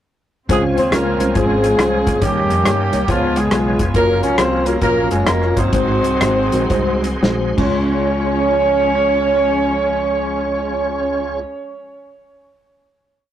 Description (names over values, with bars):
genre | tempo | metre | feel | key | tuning
uptempo gospel | 105-139 BPM | 4/4 | swing 64% on 8ths | Db major | A4 = 441 Hz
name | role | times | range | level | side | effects
warm horn section | melody | 0.5-11.4 s | F3 to Db5 | -17 LUFS | right 1 dB | tape echo
mellow tine electric piano | accompaniment | 0.5-11.4 s | Db2 to C6 | -22 LUFS | left 1 dB | medium stereo tremolo
rich studio string section | sustained chords | 0.5-11.4 s | Eb3 to Db4 | -27 LUFS | equal | none
tonewheel organ | sustained chords | 0.5-11.4 s | Ab3 to C6 | -27 LUFS | right 2 dB | chorus vibrato, fast rotary speaker
fingered electric bass | bass | 0.5-11.4 s | F1 to G2 | -23 LUFS | equal | none
warm soul drum kit | drums | 0.5-7.7 s | crash cymbal, hi-hat, kick drum, rim click, snare drum | -20 LUFS | equal | none
room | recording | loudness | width
wet booth ambience, RT60 0.2 s | rough rehearsal-room recording, tube saturation | -14 LUFS | side -11 dB against mid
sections
0.5-7.8 breakdown; 7.8-12.3 final hit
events
slowing down 3.9-7.8; drum fill 7.2-7.8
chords
0.5 Dbmaj7; 2.2 Eb7; 3.1 Db7; 3.9 Gbmaj7; 5.7 Ab7; 7.5 Dbmaj7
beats
| 0.49 0.92 1.35 1.79 | 2.22 2.65 3.08 3.52 | 3.95 4.38 4.82 5.27 | 5.73 6.21 6.71 7.23 | 7.78 8.35 8.92 9.48 | 10.05 10.62 11.19